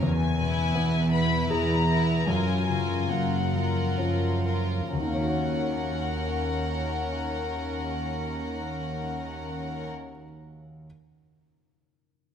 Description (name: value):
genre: cinematic, emotional film score for orchestra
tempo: 61-85 BPM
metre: 3/4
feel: rubato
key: unclear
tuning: A4 = 439 Hz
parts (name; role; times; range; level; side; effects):
- warm studio violin section; melody; 0.0-9.9 s; Gb5 to B5; -33 LUFS; left 5 dB; none
- clear studio violin section; second line; 0.0-9.9 s; Db4 to B4; -33 LUFS; left 2 dB; none
- clear concert grand piano; accompaniment; 0.0-10.9 s; Eb2 to Db5; -30 LUFS; equal; none
- concert harp; arpeggios; 0.0-10.2 s; E2 to Db5; -33 LUFS; left 8 dB; none
- warm studio cello section; bass; 0.0-9.9 s; Eb2 to Gb2; -30 LUFS; right 3 dB; none
room: moderate concert hall reverb, RT60 2.1 s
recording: close, detailed microphones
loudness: -25 LUFS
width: side -8 dB against mid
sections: 0.0-4.9 A section; 4.9-10.8 B section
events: slowing down 0.0-4.9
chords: 0.0 E; 2.3 Gbmaj7; 4.9 Ebm7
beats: | 0.03 0.75 1.50 | 2.27 3.09 3.97 | 4.94 5.92 6.91 | 7.88 8.87 9.86